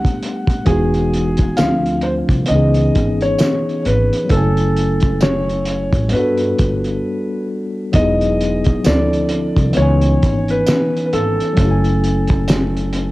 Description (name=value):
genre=lo-fi hip hop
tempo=66 BPM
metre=4/4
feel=swing 61% on 16ths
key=unclear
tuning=A4 = 439 Hz
part: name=felt-muted upright piano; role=melody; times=0.0-13.1 s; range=G#4 to F#5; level=-21 LUFS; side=equal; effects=low-pass filter, cassette tape, analog delay
part: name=tine electric piano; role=accompaniment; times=0.0-13.1 s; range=E3 to G#5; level=-19 LUFS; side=left 1 dB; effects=fast stereo tremolo, cassette tape, low-pass filter
part: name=cloth-damped thuddy drum kit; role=drums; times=0.0-13.1 s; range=hi-hat, kick drum, snare drum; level=-18 LUFS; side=equal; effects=cassette tape
part: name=upright bass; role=bass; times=0.7-13.1 s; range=E1 to G2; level=-19 LUFS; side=equal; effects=none
part: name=tambourine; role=percussion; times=1.6-12.7 s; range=none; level=-34 LUFS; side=right 4 dB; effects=none
room=light reverb, studio reverb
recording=home recording on cassette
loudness=-14 LUFS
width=side -18 dB against mid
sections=0.0-7.9 A section; 7.9-13.1 B section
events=break 7.0-7.9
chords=0.0 Gmaj7; 0.7 Emaj7; 1.6 Dm7; 2.5 C#m7; 4.3 F#m9; 6.1 Gmaj7; 7.9 Emaj7; 8.8 Dm7; 9.8 C#m7; 11.6 F#m9